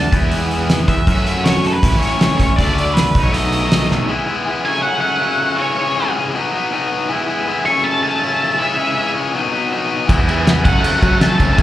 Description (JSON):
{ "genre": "indie rock", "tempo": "160 BPM", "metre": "4/4", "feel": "straight", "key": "E major", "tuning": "A4 = 437 Hz", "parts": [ { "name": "octave-fuzz lead guitar", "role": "melody", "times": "0.0-11.6 s", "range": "A4 to C#6", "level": "-19 LUFS", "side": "right 1 dB", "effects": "distortion, slapback echo" }, { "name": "biting overdriven guitar", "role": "riff", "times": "0.0-11.6 s", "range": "F#2 to F#4", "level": "-19 LUFS", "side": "left 3 dB", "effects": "slapback echo" }, { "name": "biting overdriven guitar", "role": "riff", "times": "0.0-4.1, 10.3-11.6 s", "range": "A2 to F#4", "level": "-23 LUFS", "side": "right 7 dB", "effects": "ensemble chorus, slapback echo" }, { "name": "growling picked electric bass", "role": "bass", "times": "0.0-4.1, 10.1-11.6 s", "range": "A1 to F#3", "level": "-18 LUFS", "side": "equal", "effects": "overdrive" }, { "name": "cloth-damped thuddy drum kit", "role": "drums", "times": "0.1-4.0, 10.1-11.6 s", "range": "crash cymbal, hi-hat, kick drum, snare drum", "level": "-17 LUFS", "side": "equal", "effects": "none" }, { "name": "combo organ", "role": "sustained chords", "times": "10.1-11.6 s", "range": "E4 to A5", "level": "-28 LUFS", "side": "right 2 dB", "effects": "none" } ], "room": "light reverb", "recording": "live gig heard through the venue's PA, club reverb", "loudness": "-14 LUFS", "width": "side -13 dB against mid", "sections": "0.0-4.1 A section; 4.1-11.6 B section", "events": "drum fill 3.9", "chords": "0.1 E; 1.1 F#m7; 1.8 A; 2.6 D; 3.1 B7; 4.1 E; 4.7 F#m; 5.6 C#m; 6.3 B; 7.1 E; 7.7 F#m; 8.6 C#m; 9.3 B; 10.1 E; 10.6 F#m" }